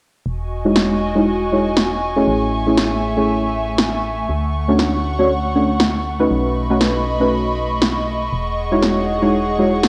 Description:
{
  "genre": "deep house",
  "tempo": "119 BPM",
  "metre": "4/4",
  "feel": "swing 55% on 16ths",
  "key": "E major",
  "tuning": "A4 = 439 Hz",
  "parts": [
    { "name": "airy breathy pad", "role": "sustained chords", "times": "0.5-9.9 s", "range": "A3 to C#6", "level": "-24 LUFS", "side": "equal", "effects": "chorus, cassette tape" },
    { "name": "organ-like FM bass", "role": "bass", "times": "0.3-9.9 s", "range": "E1 to D2", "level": "-27 LUFS", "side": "equal", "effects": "none" },
    { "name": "deep mellow chord stab", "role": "stabs", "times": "0.6-9.7 s", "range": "G#3 to C#5", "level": "-20 LUFS", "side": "equal", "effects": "chorus, cassette tape, tape echo" },
    { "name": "electronic snare drum", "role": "drums", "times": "0.8-9.9 s", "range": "none", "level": "-21 LUFS", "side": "equal", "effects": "overdrive, cassette tape" }
  ],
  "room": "light reverb, digital ambience",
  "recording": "home recording on cassette",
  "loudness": "-18 LUFS",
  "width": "mono",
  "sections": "0.3-9.9 A section",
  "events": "none",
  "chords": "0.3 Emaj13; 2.3 Amaj7; 4.3 Dmaj7; 6.3 B9; 8.3 Emaj13"
}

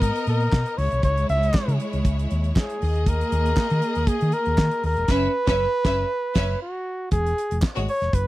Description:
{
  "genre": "disco",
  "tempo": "118 BPM",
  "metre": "4/4",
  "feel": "straight",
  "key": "unclear",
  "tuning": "A4 = 441 Hz",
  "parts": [
    { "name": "warm flugelhorn", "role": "melody", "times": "0.0-8.3 s", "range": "F#4 to E5", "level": "-24 LUFS", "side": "equal", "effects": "none" },
    { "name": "bright studio string section", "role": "second line", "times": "0.0-7.9 s", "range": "G#3 to E5", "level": "-28 LUFS", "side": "equal", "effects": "none" },
    { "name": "hollow-body short-scale fingered electric bass", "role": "bass", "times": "0.0-8.3 s", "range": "E1 to D#3", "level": "-23 LUFS", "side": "equal", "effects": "none" },
    { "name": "damped 70s drum kit", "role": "drums", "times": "0.0-8.3 s", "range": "crash cymbal, hi-hat, kick drum, snare drum", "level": "-22 LUFS", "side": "equal", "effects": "none" },
    { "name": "group handclap", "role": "percussion", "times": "0.5-7.7 s", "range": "none", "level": "-40 LUFS", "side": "right 2 dB", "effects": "none" }
  ],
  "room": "little or no reverb",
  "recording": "dry, close 1970s-style studio recording",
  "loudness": "-20 LUFS",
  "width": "side -16 dB against mid",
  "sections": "0.0-7.1 A section; 7.1-8.3 B section",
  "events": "band accent 5.1-7.1",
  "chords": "0.0 Bmaj7; 0.8 C#m; 2.8 D#sus4; 5.1 F#7sus4; 7.1 Eadd9"
}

